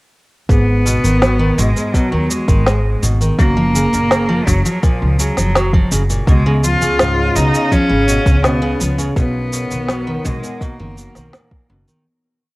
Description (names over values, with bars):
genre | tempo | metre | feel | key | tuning
folktronica | 83 BPM | 4/4 | straight | B lydian | A4 = 441 Hz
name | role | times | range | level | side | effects
clear cello | melody | 0.5-11.7 s | E#3 to E#4 | -19 LUFS | equal | cassette tape
picked steel-string acoustic guitar | arpeggios | 0.5-12.0 s | G#2 to F#3 | -20 LUFS | equal | cassette tape
upright bass | bass | 0.5-11.8 s | F#1 to D#2 | -17 LUFS | equal | none
electronic kick drum | drums | 0.5-11.7 s | none | -14 LUFS | equal | studio ambience, cassette tape
electronic shaker and snare drum | drums | 0.5-12.0 s | none | -19 LUFS | equal | studio ambience, cassette tape
warbly tape-like pad | sustained chords | 6.3-12.0 s | C#4 to F#5 | -24 LUFS | left 1 dB | chorus, built-in reverb, vintage 12-bit sampler grit, cassette tape
room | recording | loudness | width
little or no reverb | home recording on cassette | -12 LUFS | side -21 dB against mid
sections
0.5-12.1 groove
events
fade-out 8.2-12.1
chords
0.5 G#m; 3.4 F#maj7; 6.3 C#7; 9.2 Bmaj7